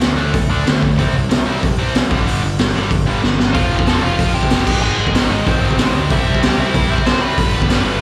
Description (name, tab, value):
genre	punk rock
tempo	188 BPM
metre	4/4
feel	straight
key	unclear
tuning	A4 = 439 Hz
part	tight distorted guitar	riff	0.0-8.0 s	F2 to D4	-23 LUFS	equal	distortion, slapback echo
part	fuzz picked electric bass	bass	0.0-8.0 s	F1 to C3	-22 LUFS	equal	overdrive
part	raw garage drum kit	drums	0.0-7.8 s	crash cymbal, hi-hat, kick drum, snare drum	-19 LUFS	equal	none
part	smooth overdriven lead guitar	melody	3.5-8.0 s	C4 to C6	-24 LUFS	equal	slapback echo
room	little or no reverb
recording	live gig heard through the venue's PA, club reverb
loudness	-16 LUFS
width	mono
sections	0.0-3.6 A section; 3.6-8.0 B section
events	drum fill 3.2-3.6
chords	0.0 D5; 1.0 C5; 2.1 G5; 3.6 F; 4.7 Ab; 6.1 C; 7.4 G